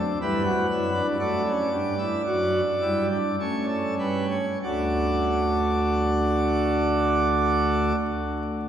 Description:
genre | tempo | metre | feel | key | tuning
classical, baroque-style 3-part fugue for pipe organ | 46-63 BPM | 3/4 | straight | D major | A4 = 441 Hz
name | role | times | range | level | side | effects
pipe organ, plenum | solo | 0.0-8.0 s | D2 to D5 | -22 LUFS | right 1 dB | none
room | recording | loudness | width
wet cathedral reverb, RT60 5.7 s | heard from further back in the room, vinyl crackle | -22 LUFS | side -9 dB against mid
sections
0.0-4.6 A section; 4.6-8.5 B section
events
slowing down 0.0-4.6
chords
0.2 G; 1.2 D; 3.4 A7; 4.6 D

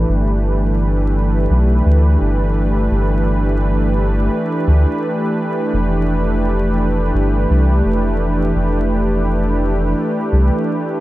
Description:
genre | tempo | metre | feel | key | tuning
ambient dub | 85 BPM | 4/4 | swing 58% on 16ths | G mixolydian | A4 = 439 Hz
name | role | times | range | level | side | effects
warm analog pad | sustained chords | 0.0-11.0 s | E3 to B4 | -18 LUFS | right 1 dB | chorus
soft dub sub bass | bass | 0.0-10.5 s | F1 to D2 | -16 LUFS | equal | none
room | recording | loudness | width
little or no reverb | vinyl crackle | -14 LUFS | side -16 dB against mid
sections
0.0-11.0 A section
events
none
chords
0.1 G; 5.7 Fsus2

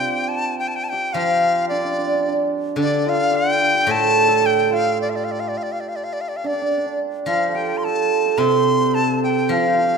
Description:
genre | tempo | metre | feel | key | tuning
chinese traditional, Chinese chamber ensemble | 108 BPM | 4/4 | rubato | G shang mode | A4 = 436 Hz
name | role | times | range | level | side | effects
bright dizi | melody | 0.0-10.0 s | D5 to C6 | -21 LUFS | left 2 dB | none
hammered dulcimer | second line | 0.0-10.0 s | C4 to C5 | -22 LUFS | right 7 dB | none
steel-string zither | accompaniment | 0.0-10.0 s | A2 to F3 | -22 LUFS | left 3 dB | none
room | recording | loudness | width
moderate concert hall reverb, RT60 2.0 s | minimal, uncompressed stereo recording | -17 LUFS | side -6 dB against mid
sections
0.0-10.0 A section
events
none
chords
none

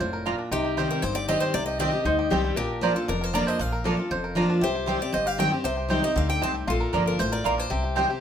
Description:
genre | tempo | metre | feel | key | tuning
bluegrass | 234 BPM | 4/4 | straight | C dorian | A4 = 440 Hz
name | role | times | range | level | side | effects
bluegrass banjo | melody | 0.0-8.2 s | C4 to C5 | -32 LUFS | right 2 dB | none
picked steel-string acoustic guitar | melody | 0.0-8.2 s | G4 to A5 | -29 LUFS | left 2 dB | none
picked steel-string acoustic guitar | accompaniment | 0.0-8.2 s | F2 to G4 | -28 LUFS | equal | none
upright bass | bass | 0.0-8.0 s | F1 to D2 | -31 LUFS | equal | none
mandolin | stabs | 0.3-8.1 s | Bb3 to Bb5 | -28 LUFS | right 4 dB | none
lap resonator guitar | second line | 0.5-8.2 s | Eb4 to Bb4 | -31 LUFS | left 4 dB | none
room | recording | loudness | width
wet studio reverb, RT60 0.6 s | minimal, uncompressed stereo recording | -22 LUFS | side -8 dB against mid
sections
0.0-8.2 A section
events
none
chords
0.0 Bb; 0.5 Cm; 2.6 Bb; 4.6 Cm; 6.7 Bb

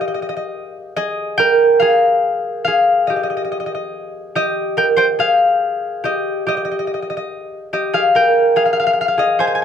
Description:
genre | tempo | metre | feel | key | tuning
calypso | 143 BPM | 4/4 | straight | unclear | A4 = 440 Hz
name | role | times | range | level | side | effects
concert harp | solo | 0.0-9.6 s | G4 to Ab5 | -15 LUFS | equal | none
room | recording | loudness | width
light reverb | dark, warm production | -14 LUFS | side -8 dB against mid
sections
0.0-9.6 A section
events
none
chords
0.0 Fm11/G; 4.6 Abmaj7(no3); 7.9 Abmaj13

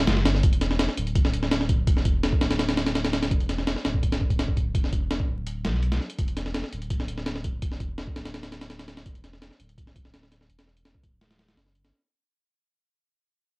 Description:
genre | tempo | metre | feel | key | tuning
drum and bass, jungle | 167 BPM | 4/4 | straight | E minor | A4 = 440 Hz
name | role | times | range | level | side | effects
saturated sub bass | bass | 0.0-11.9 s | D1 to B1 | -29 LUFS | equal | none
breakbeat sampler-style drum kit | drums | 0.1-11.9 s | hi-hat, kick drum, snare drum | -24 LUFS | equal | cassette tape
room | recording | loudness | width
light reverb | home recording on cassette, vinyl crackle | -23 LUFS | side -29 dB against mid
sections
0.0-11.9 A section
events
fade-out 0.4-11.9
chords
none

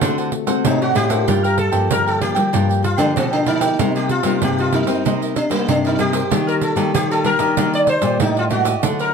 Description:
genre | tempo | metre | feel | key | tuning
samba and choro | 95 BPM | 4/4 | straight | G minor | A4 = 440 Hz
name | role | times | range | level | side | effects
cavaquinho | accompaniment | 0.0-9.1 s | D4 to G5 | -25 LUFS | right 4 dB | none
nylon-string guitar | accompaniment | 0.0-9.1 s | G2 to Bb4 | -23 LUFS | left 7 dB | none
nylon-string guitar | bass | 0.0-9.1 s | G2 to C4 | -22 LUFS | equal | none
pandeiro | percussion | 0.0-9.1 s | none | -24 LUFS | right 8 dB | none
sitar | melody | 0.7-9.1 s | Bb3 to D5 | -19 LUFS | right 1 dB | none
room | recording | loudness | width
moderate studio reverb, RT60 0.6 s | none | -15 LUFS | side -6 dB against mid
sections
0.0-1.3 A section; 1.3-9.1 B section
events
sitar solo 0.0-1.3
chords
0.0 D7; 1.3 Gm7; 3.8 Cm7; 6.3 Ebmaj7

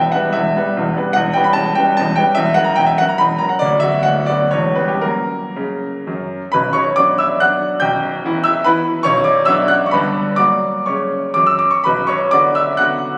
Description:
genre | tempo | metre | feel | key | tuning
classical, romantic triple-time dance for piano with dotted rhythms | 110-155 BPM | 3/4 | rubato | B minor | A4 = 440 Hz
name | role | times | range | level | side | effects
clear grand piano | solo | 0.0-13.2 s | B0 to G6 | -16 LUFS | equal | none
room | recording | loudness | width
wet recital hall reverb, RT60 1.9 s | recorded on a phone in the room, club reverb, compression | -16 LUFS | mono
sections
0.0-6.5 A section; 6.5-13.2 B section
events
none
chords
0.0 Em; 1.2 C#m7b5/E; 2.4 F#7/E; 3.6 Bm/D; 4.5 C#m7b5/E; 5.0 F#; 6.5 Bm; 7.8 Em/B; 9.1 Bm; 9.9 G; 10.4 F#; 11.9 Bm

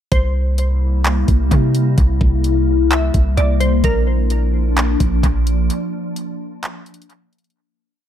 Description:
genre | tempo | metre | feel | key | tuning
hip hop, atmospheric cloud-rap | 129 BPM | 4/4 | half-time | Bb lydian | A4 = 439 Hz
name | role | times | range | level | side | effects
glassy wavetable pluck | melody | 0.1-4.7 s | Bb4 to E5 | -25 LUFS | right 2 dB | chorus, low-pass filter, analog delay
glassy FM pad | sustained chords | 0.8-7.5 s | C3 to E4 | -21 LUFS | left 2 dB | ensemble chorus, built-in reverb, phaser, sidechain pumping
long sustained 808-style bass | bass | 0.1-5.7 s | Bb1 to C3 | -16 LUFS | equal | none
trap drum kit | drums | 0.1-7.6 s | handclaps, hi-hat, kick drum | -18 LUFS | equal | analog delay
room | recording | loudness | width
digital ambience | echo-heavy mix | -14 LUFS | side -10 dB against mid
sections
0.1-7.6 verse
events
break 5.7-7.6; fade-out 5.7-7.6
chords
0.1 C7; 3.8 Bb

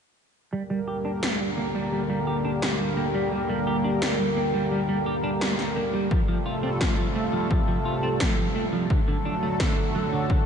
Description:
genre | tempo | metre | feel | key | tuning
synthwave | 86 BPM | 4/4 | straight | G minor | A4 = 440 Hz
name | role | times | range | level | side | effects
chorused pulse-width pad | sustained chords | 0.5-10.5 s | C3 to Bb4 | -26 LUFS | equal | sidechain pumping
clean electric guitar | riff | 0.5-10.4 s | D3 to G4 | -30 LUFS | right 2 dB | lush chorus, low-pass filter, ping-pong delay
electronic snare drum | drums | 1.2-9.7 s | none | -31 LUFS | left 1 dB | none
electronic kick drum | drums | 6.1-10.4 s | none | -25 LUFS | equal | none
room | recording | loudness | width
wet cathedral reverb, RT60 5.3 s | dreamy mix soaked in reverb, nothing above 10.3 kHz | -23 LUFS | side -7 dB against mid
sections
0.5-10.5 A section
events
none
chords
0.5 Gm; 6.1 Fadd9; 8.9 D

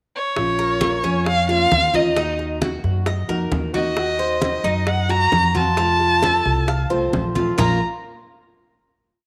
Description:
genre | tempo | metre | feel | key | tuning
latin, Cuban son and guajira | 133 BPM | 4/4 | straight | Bb harmonic minor | A4 = 440 Hz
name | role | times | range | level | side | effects
rich violin | melody | 0.2-7.8 s | Db5 to Bb5 | -22 LUFS | equal | none
nylon-string guitar | accompaniment | 0.4-7.8 s | Bb2 to Gb4 | -27 LUFS | equal | none
upright bass | bass | 0.4-7.8 s | Bb1 to Gb2 | -26 LUFS | equal | none
bongos | percussion | 0.4-7.7 s | none | -30 LUFS | equal | none
congas | percussion | 0.4-7.7 s | none | -29 LUFS | equal | none
Cuban tres | arpeggios | 0.6-7.8 s | Bb3 to F5 | -29 LUFS | equal | none
room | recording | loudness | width
moderate echo chamber reverb, RT60 1.6 s, studio ambience | none | -19 LUFS | mono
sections
0.0-0.4 pickup bar; 0.4-7.6 verse; 7.6-9.3 final chord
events
none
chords
0.4 Bbm; 2.2 Ebm; 4.0 Cdim/Eb; 5.8 F; 7.6 Bb5

